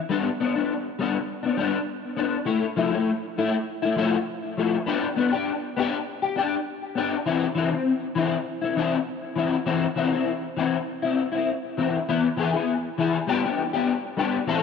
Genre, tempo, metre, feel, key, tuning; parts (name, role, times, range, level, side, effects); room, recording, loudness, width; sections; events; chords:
highlife; 100 BPM; 4/4; straight; A4 = 440 Hz
electric guitar at the edge of break-up; solo; 0.1-14.6 s; E3 to A4; -23 LUFS; left 5 dB; ensemble chorus, tape echo
moderate echo chamber reverb, RT60 2.4 s; -23 LUFS; side -6 dB against mid
0.0-9.7 A section; 9.7-14.6 B section
0.1 G; 2.5 Fmaj7; 4.9 G; 7.3 C/E; 12.1 E; 13.3 G